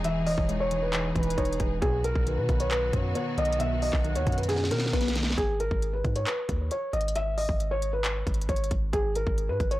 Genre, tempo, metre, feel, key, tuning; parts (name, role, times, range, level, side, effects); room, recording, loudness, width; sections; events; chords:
hip hop, trap; 135 BPM; 4/4; half-time; G# minor; A4 = 436 Hz
felt-muted upright piano; melody; 0.0-9.8 s; G#4 to E5; -30 LUFS; equal; low-pass filter, analog delay
gliding portamento lead; second line; 0.0-4.9 s; B4 to F#5; -36 LUFS; right 3 dB; chorus, analog delay
warbly lo-fi synth keys; accompaniment; 0.0-5.4 s; B2 to D#4; -32 LUFS; equal; chorus, phaser, low-pass filter
clear symphonic string section; sustained chords; 0.0-5.3 s; D#3 to G#4; -39 LUFS; left 2 dB
long sustained 808-style bass; bass; 0.0-9.8 s; E1 to B2; -30 LUFS; equal; tube saturation
trap drum kit; drums; 0.0-9.8 s; handclaps, hi-hat, kick drum, snare drum; -30 LUFS; equal
light reverb; blown-out, overdriven recording, overdrive; -25 LUFS; side -16 dB against mid
0.0-5.4 A section; 5.4-9.8 B section
drum fill 4.5-5.4
0.0 Emaj7; 1.8 B; 5.4 G#m